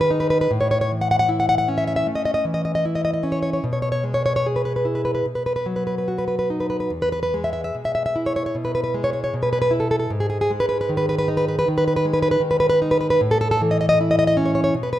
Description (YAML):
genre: romantic piece for solo classical guitar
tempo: 68-80 BPM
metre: 4/4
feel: rubato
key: E major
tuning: A4 = 439 Hz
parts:
  - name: nylon-string guitar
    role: solo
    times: 0.0-15.0 s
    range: E2 to F#5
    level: -18 LUFS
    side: equal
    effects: none
room: moderate recital hall reverb, RT60 1.5 s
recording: minimal, uncompressed stereo recording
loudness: -18 LUFS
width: side -13 dB against mid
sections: 0.0-15.0 A section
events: none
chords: 0.5 A; 3.6 E/B; 5.3 B; 6.9 E; 10.1 G#5; 13.2 A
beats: | 0.50 1.29 2.07 2.84 | 3.63 4.46 5.25 6.06 | 6.90 7.76 8.55 9.34 | 10.12 10.89 11.66 12.42 | 13.19 13.98 14.73